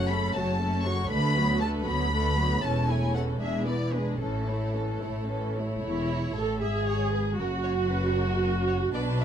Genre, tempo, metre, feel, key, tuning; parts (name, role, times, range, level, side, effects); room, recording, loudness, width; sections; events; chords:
quick classical-period movement for string orchestra; 77 BPM (dotted quarters); 6/8; rubato; A major; A4 = 438 Hz
rich chamber violin section; melody; 0.0-9.2 s; A4 to C#6; -33 LUFS; left 2 dB
rich chamber violin section; second line; 0.0-9.2 s; C#4 to B5; -35 LUFS; right 1 dB
rich chamber viola section; accompaniment; 0.0-9.2 s; E3 to A4; -31 LUFS; right 2 dB
rich chamber cello section; bass; 0.0-9.2 s; D2 to B2; -31 LUFS; left 1 dB
warm chamber double bass section; bass; 0.0-9.2 s; E1 to D2; -30 LUFS; right 1 dB
light reverb; dark, warm production; -25 LUFS; side -9 dB against mid
0.0-5.8 A section; 5.8-9.2 B section
0.0 F#m; 1.1 Bm7/D; 2.6 A/E; 3.4 E7; 4.2 A; 5.8 A/E; 6.6 G#sus4; 7.4 F#